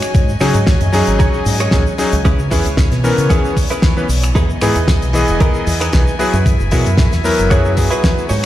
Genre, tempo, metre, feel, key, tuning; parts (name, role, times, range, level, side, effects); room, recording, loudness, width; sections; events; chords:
nu-disco, nu disco; 114 BPM; 4/4; straight; A4 = 441 Hz
rich chamber string section; sustained chords; 0.0-8.5 s; E3 to G#5; -25 LUFS; equal; sidechain pumping
direct-recorded clean electric guitar; riff; 0.0-8.5 s; C#4 to G#5; -22 LUFS; right 2 dB; lush chorus, digital delay
damped 70s drum kit; drums; 0.0-8.5 s; finger snaps, hi-hat, shaker, snare drum; -22 LUFS; left 1 dB
fingered electric bass with an envelope filter; bass; 0.1-8.4 s; E1 to C#3; -16 LUFS; equal
electronic kick drum; drums; 0.1-8.2 s; -14 LUFS; equal; overdrive
bright electric grand piano; accompaniment; 0.4-8.3 s; E3 to D#5; -18 LUFS; left 2 dB; vintage 12-bit sampler grit, sidechain pumping, digital delay
light reverb, small room ambience; played on a big sound system in a bare room, stone room reverb; -12 LUFS; side -13 dB against mid
0.0-8.5 A section
0.0 G#7sus4; 2.2 C#m7; 4.4 Emaj7; 6.2 F#9sus4